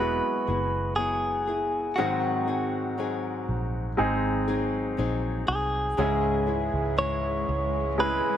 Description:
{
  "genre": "pop",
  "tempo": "60 BPM",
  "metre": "4/4",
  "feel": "straight",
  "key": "unclear",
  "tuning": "A4 = 440 Hz",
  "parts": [
    { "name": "direct-recorded clean electric guitar", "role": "melody", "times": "0.0-8.4 s", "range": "F#4 to C#5", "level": "-28 LUFS", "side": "equal", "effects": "warbly pitch drift" },
    { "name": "clear baby grand piano", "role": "accompaniment", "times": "0.0-8.4 s", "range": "G#2 to G#4", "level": "-29 LUFS", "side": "equal", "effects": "none" },
    { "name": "nylon-string guitar", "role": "arpeggios", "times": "0.0-8.4 s", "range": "G#2 to G#4", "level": "-33 LUFS", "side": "left 6 dB", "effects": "none" },
    { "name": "vintage muted fingered electric bass", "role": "bass", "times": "0.0-8.2 s", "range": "E1 to C#2", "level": "-31 LUFS", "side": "right 1 dB", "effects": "none" },
    { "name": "pedal harmonium", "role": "sustained chords", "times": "6.0-8.4 s", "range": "C#3 to E4", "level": "-35 LUFS", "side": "right 1 dB", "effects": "none" },
    { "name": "swell", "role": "sound effects", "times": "6.8-8.4 s", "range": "none", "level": "-37 LUFS", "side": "left 2 dB", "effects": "none" }
  ],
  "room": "light reverb, small room ambience",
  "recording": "none",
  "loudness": "-24 LUFS",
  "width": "side -10 dB against mid",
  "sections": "0.0-8.4 A section",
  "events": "swell 6.8-8.4",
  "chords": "0.0 Eadd9; 2.0 G#7; 6.0 C#m",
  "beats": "0.98 | 1.98 2.98 3.98 4.98 | 5.98 6.98 7.98"
}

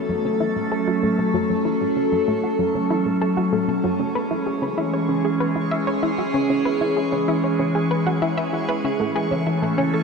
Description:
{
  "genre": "ambient, sequencer-driven space music",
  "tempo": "96 BPM",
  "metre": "4/4",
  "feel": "straight",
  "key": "unclear",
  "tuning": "A4 = 440 Hz",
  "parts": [
    { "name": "evolving wavetable pad", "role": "sustained chords", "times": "0.0-10.0 s", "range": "E3 to A4", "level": "-20 LUFS", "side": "equal", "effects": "phaser, built-in reverb, shimmer reverb" },
    { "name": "bubbling stepped-filter texture", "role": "texture", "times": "0.0-10.0 s", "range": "C#6", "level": "-38 LUFS", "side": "right 4 dB", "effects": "chorus, built-in reverb, shimmer reverb" },
    { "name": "analog pluck", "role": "riff", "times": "0.1-10.0 s", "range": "F#3 to E5", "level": "-25 LUFS", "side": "left 1 dB", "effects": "chorus, vintage 12-bit sampler grit, ping-pong delay, shimmer reverb" }
  ],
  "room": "wet huge ambient reverb, RT60 7.5 s",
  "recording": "dark, warm production",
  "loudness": "-19 LUFS",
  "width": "side -5 dB against mid",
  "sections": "0.0-10.0 A section",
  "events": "fade-in on synth texture 0.0-10.0; filter sweep on synth arpeggio sound 0.0-10.0",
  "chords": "0.0 F#m; 4.0 C#m; 9.0 A",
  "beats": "0.25 0.87 | 1.50 2.12 2.75 3.37 | 4.00 4.62 5.25 5.87 | 6.50 7.12 7.75 8.37 | 9.00 9.62"
}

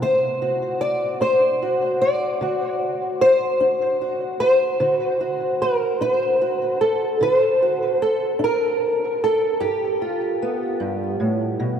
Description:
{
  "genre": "acoustic country blues, solo or duo",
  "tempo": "50 BPM (dotted quarters)",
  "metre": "12/8",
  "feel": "straight",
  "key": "unclear",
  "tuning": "A4 = 440 Hz",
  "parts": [
    { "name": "fingerpicked old ladder-braced acoustic guitar", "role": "solo", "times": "0.0-11.8 s", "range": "G2 to D5", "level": "-18 LUFS", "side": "equal", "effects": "analog chorus, tape echo" }
  ],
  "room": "wet cathedral reverb, RT60 6.6 s",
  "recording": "dreamy mix soaked in reverb",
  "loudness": "-18 LUFS",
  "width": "side -8 dB against mid",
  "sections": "0.0-11.8 A section",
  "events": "none",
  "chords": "0.0 D7; 9.6 G7",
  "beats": "| 0.03 1.22 2.41 3.61 | 4.80 6.00 7.20 8.40 | 9.60 10.81"
}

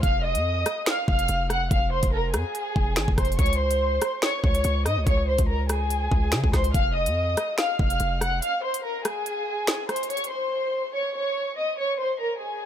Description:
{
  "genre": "hip hop, drill",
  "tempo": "143 BPM",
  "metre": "4/4",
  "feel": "half-time",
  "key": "F phrygian",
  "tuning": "A4 = 440 Hz",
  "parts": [
    { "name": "warm studio violin section", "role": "melody", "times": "0.0-12.7 s", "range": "Ab4 to Gb6", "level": "-25 LUFS", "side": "equal", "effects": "low-pass filter" },
    { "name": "hard-hitting 808-style bass", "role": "bass", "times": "0.0-8.4 s", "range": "F1 to Db3", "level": "-26 LUFS", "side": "equal", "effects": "none" },
    { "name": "drill drum kit", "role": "drums", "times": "0.0-10.3 s", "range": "finger snaps, hi-hat, kick drum, rim click, snare drum", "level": "-25 LUFS", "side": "equal", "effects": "none" }
  ],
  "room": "digital ambience",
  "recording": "none",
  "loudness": "-22 LUFS",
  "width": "side -10 dB against mid",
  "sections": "0.0-10.1 A section; 10.1-12.7 B section",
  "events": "break 8.4-10.1",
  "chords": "0.0 Fm; 3.4 Db5; 6.7 Fm; 10.1 N.C.",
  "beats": "| 0.03 0.45 0.87 1.29 | 1.71 2.13 2.55 2.97 | 3.39 3.81 4.23 4.65 | 5.07 5.49 5.91 6.33 | 6.75 7.16 7.58 8.00 | 8.42 8.84 9.26 9.68 | 10.10 10.52 10.94 11.36 | 11.78 12.20 12.62"
}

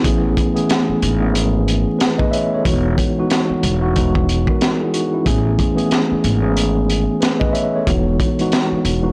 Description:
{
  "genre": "hip hop, boom-bap hip-hop",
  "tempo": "92 BPM",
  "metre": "4/4",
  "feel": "swing 60% on 16ths",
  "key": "A lydian",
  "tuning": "A4 = 440 Hz",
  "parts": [
    { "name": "mellow tine electric piano", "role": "accompaniment", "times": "0.0-9.1 s", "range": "E3 to E5", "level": "-20 LUFS", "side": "equal", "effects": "high-pass filter, low-pass filter" },
    { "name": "upright bass", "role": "bass", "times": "0.0-9.1 s", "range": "E1 to A1", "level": "-22 LUFS", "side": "equal", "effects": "none" },
    { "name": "crunchy breakbeat drum kit", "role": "drums", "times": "0.0-9.0 s", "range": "hi-hat, kick drum, snare drum", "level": "-21 LUFS", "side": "equal", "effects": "vintage 12-bit sampler grit" }
  ],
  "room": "small room ambience",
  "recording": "blown-out, overdriven recording, vinyl crackle, overdrive",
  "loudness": "-17 LUFS",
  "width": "mono",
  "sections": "0.0-9.1 A section",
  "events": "none",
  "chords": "0.0 Amaj9; 2.7 Emaj9; 5.3 Amaj9; 7.9 Emaj9",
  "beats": "| 0.04 0.69 1.35 2.00 | 2.65 3.30 3.96 4.61 | 5.26 5.91 6.56 7.22 | 7.87 8.52"
}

